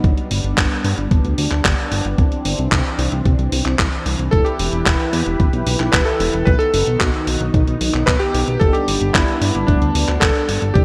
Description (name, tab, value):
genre	italo disco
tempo	112 BPM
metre	4/4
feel	straight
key	unclear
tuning	A4 = 440 Hz
part	warm analog pad	sustained chords	0.0-10.8 s	D#3 to B4	-26 LUFS	equal	chorus
part	chorused synth bass	bass	0.0-10.8 s	D1 to G2	-23 LUFS	equal	none
part	dusty soul sampler-style drum kit	drums	0.0-10.8 s	handclaps, hi-hat	-24 LUFS	equal	gated reverb
part	electronic kick drum	drums	0.0-10.8 s	none	-20 LUFS	equal	none
part	clear electric grand piano	melody	4.3-10.8 s	D4 to B4	-23 LUFS	equal	analog chorus, digital delay
room	moderate lush hall reverb, RT60 1.9 s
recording	bright 1980s-style digital production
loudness	-17 LUFS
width	mono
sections	0.0-10.8 A section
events	none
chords	0.0 G; 2.2 Cadd9; 4.3 Em; 6.5 B; 8.6 G